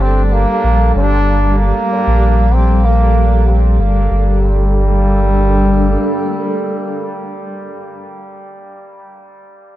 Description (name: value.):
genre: ambient dub.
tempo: 95 BPM.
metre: 4/4.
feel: swing 54% on 16ths.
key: G minor.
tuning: A4 = 437 Hz.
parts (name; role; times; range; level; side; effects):
clear trombone; melody; 0.0-7.2 s; G3 to D4; -18 LUFS; right 1 dB; dub echo.
granular cloud pad; sustained chords; 0.0-7.4 s; G3 to D5; -19 LUFS; left 1 dB; built-in reverb.
warm sub bass; bass; 0.0-6.0 s; G1 to Bb1; -12 LUFS; equal; none.
room: light reverb, small room ambience.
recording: dark, warm production.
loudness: -11 LUFS.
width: side -14 dB against mid.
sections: 0.0-4.1 A section; 4.1-6.6 B section.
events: none.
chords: 0.0 Gmadd9.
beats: 0.32 0.95 | 1.58 2.22 2.85 3.48 | 4.11 4.74 5.37 6.01.